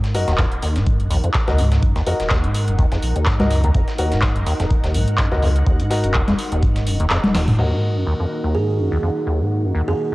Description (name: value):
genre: acid house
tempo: 125 BPM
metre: 4/4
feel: swing 55% on 16ths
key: Eb minor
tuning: A4 = 440 Hz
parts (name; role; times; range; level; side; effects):
- string machine, full ensemble; sustained chords; 0.0-10.1 s; Eb3 to Gb5; -28 LUFS; equal; ensemble chorus, sidechain pumping, cassette tape
- deep acid bass; riff; 0.0-10.1 s; Eb2 to Ab2; -20 LUFS; equal; tube saturation, analog chorus, sidechain pumping, cassette tape
- booming analog drum machine; drums; 0.0-7.7 s; congas, crash cymbal, handclaps, hi-hat, snare drum, toms; -23 LUFS; equal; low-pass filter on hats, cassette tape, low-pass filter on snare, low-pass filter on perc, low-pass filter on toms, low-pass filter on cymbals, low-pass filter on room
- dusty soul sampler-style drum kit; drums; 0.0-7.3 s; hi-hat, snare drum; -35 LUFS; equal; high-pass filter on hats, cassette tape, high-pass filter on snare
- warm baby grand piano; stabs; 0.1-10.1 s; Gb4 to Eb5; -26 LUFS; left 2 dB; low-pass filter, cassette tape, analog delay
- warm sub bass; bass; 0.3-7.6 s; Eb1 to Db2; -22 LUFS; equal; sidechain pumping
- electronic kick drum; drums; 0.4-6.7 s; none; -20 LUFS; equal; cassette tape
- buzzing kalimba; melody; 8.5-10.0 s; Ab4; -24 LUFS; right 5 dB; cassette tape, analog delay
room: moderate spring reverb, RT60 2.3 s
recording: home recording on cassette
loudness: -16 LUFS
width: side -19 dB against mid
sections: 0.0-7.6 A section; 7.6-10.1 B section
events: kick drops out 7.1-7.6; drum fill 7.2-7.6; band accent 7.3; filter sweep on string machine 7.6-10.1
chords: 0.0 Ebm